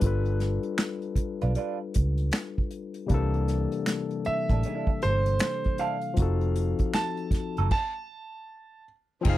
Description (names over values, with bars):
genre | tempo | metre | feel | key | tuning
R&B, neo-soul | 78 BPM | 4/4 | swing 62% on 16ths | unclear | A4 = 440 Hz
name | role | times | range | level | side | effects
clear grand piano | melody | 0.0-8.8 s | Cb5 to A5 | -31 LUFS | right 3 dB | slapback echo
barky tine electric piano | accompaniment | 0.0-9.4 s | C3 to F5 | -31 LUFS | left 6 dB | overdrive
vintage muted fingered electric bass | bass | 0.0-9.4 s | F1 to Db2 | -26 LUFS | right 1 dB | transformer saturation
unplugged drum kit | drums | 0.0-9.4 s | crash cymbal, finger snaps, hi-hat, kick drum, snare drum | -27 LUFS | equal | none
clean electric guitar | second line | 1.4-7.7 s | Gb3 to B4 | -33 LUFS | right 10 dB | wah
warm studio string section | sustained chords | 9.2-9.4 s | F3 to Ab4 | -34 LUFS | right 2 dB | none
room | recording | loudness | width
little or no reverb | dry, close 1970s-style studio recording | -25 LUFS | side -15 dB against mid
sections
0.0-9.2 A section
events
stop 7.7-9.2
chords
0.0 G7; 3.1 C13; 6.2 F7b9